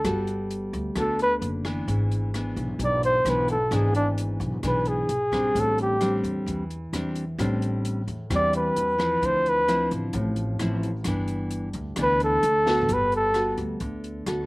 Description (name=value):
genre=bossa nova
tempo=131 BPM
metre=4/4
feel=straight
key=G major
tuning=A4 = 436 Hz
part: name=breathy flugelhorn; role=melody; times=0.0-13.6 s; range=D4 to D5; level=-22 LUFS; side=equal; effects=slapback echo
part: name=nylon-string guitar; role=accompaniment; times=0.0-14.5 s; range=G2 to A4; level=-28 LUFS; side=equal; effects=none
part: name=upright bass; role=bass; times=0.0-14.5 s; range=F#1 to E2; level=-29 LUFS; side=equal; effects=none
part: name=open jazz drum kit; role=drums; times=0.0-14.4 s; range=hi-hat, kick drum, rim click, snare drum, toms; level=-36 LUFS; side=equal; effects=none
room=little or no reverb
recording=recorded outdoors, with no room sound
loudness=-22 LUFS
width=side -23 dB against mid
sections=0.0-12.9 A section; 12.9-14.5 A section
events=flugelhorn solo 0.0-14.5; drum fill 12.7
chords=0.0 Gmaj9; 1.9 E7/G#; 5.6 Am11; 9.2 Dm9; 11.1 G6; 12.9 Gmaj9